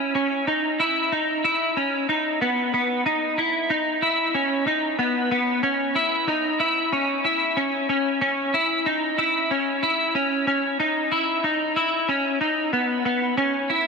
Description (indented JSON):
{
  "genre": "dream pop",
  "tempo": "93 BPM",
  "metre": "4/4",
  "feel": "straight",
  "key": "unclear",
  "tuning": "A4 = 438 Hz",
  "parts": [
    { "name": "clean electric guitar", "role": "solo", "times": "0.0-13.9 s", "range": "B3 to E4", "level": "-20 LUFS", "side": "equal", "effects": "ensemble chorus, tape echo" }
  ],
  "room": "moderate huge ambient reverb, RT60 7.3 s",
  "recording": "dark, warm production",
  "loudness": "-20 LUFS",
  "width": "side -4 dB against mid",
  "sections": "0.0-13.9 A section",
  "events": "none",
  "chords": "none",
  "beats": "| 0.47 1.12 1.76 2.41 | 3.06 3.70 4.34 4.99 | 5.64 6.28 6.93 7.57 | 8.22 8.86 9.51 10.15 | 10.80 11.44 12.09 12.73 | 13.38"
}